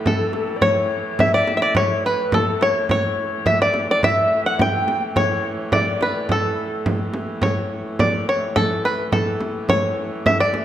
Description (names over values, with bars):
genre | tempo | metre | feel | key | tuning
medieval dance | 106 BPM | 2/4 | straight | A mixolydian | A4 = 438 Hz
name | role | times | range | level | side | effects
mellow alto recorder | second line | 0.0-6.9 s | A4 to G5 | -24 LUFS | left 1 dB | none
rich hurdy-gurdy | drone | 0.0-10.6 s | A2 to E3 | -30 LUFS | equal | none
bluegrass banjo | melody | 0.1-10.6 s | A4 to G5 | -20 LUFS | equal | none
frame drum | percussion | 0.1-10.6 s | none | -23 LUFS | right 2 dB | none
room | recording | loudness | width
wet recital hall reverb, RT60 1.8 s | none | -17 LUFS | side -11 dB against mid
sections
0.0-7.4 A section; 7.4-10.6 A section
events
none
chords
none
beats
0.05 | 0.62 1.19 | 1.76 2.32 | 2.89 3.46 | 4.02 4.59 | 5.16 5.72 | 6.29 6.86 | 7.42 7.99 | 8.55 9.12 | 9.69 10.25